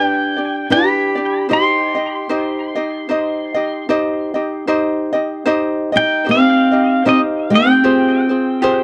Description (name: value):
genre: Hawaiian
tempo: 76 BPM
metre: 4/4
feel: swing 58% on 8ths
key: C minor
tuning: A4 = 440 Hz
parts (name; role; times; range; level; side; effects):
- pedal steel guitar; melody; 0.0-8.8 s; Eb5 to C6; -20 LUFS; equal; tape echo
- fingerpicked steel-string acoustic guitar; second line; 0.0-8.8 s; C4 to G4; -19 LUFS; equal; none
- ukulele; accompaniment; 0.0-8.8 s; D4 to Eb5; -20 LUFS; equal; none
room: wet booth ambience, RT60 0.2 s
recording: dry, close 1970s-style studio recording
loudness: -16 LUFS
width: mono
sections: 0.0-4.7 A section; 4.7-8.8 A section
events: none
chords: 0.0 G; 1.5 Cm; 7.8 Fmadd9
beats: 0.71 | 1.50 2.30 3.09 3.88 | 4.67 5.46 6.26 7.05 | 7.84 8.63